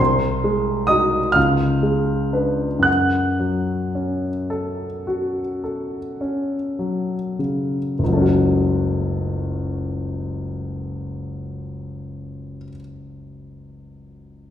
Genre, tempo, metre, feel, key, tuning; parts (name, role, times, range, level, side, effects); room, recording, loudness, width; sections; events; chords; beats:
classical, romantic nocturne for solo piano; 31-45 BPM (dotted quarters); 9/8; rubato; F# minor; A4 = 440 Hz
warm grand piano; solo; 0.0-14.5 s; F#1 to F#6; -19 LUFS; equal
wet recital hall reverb, RT60 1.6 s; heard from further back in the room; -19 LUFS; side -10 dB against mid
0.0-8.0 A section; 8.0-13.0 B section
slowing down 0.0-8.0
0.0 G#7/B#; 1.4 C#7b9; 2.9 F#m
1.36 | 2.86 4.51 6.21 | 8.00 9.68 11.36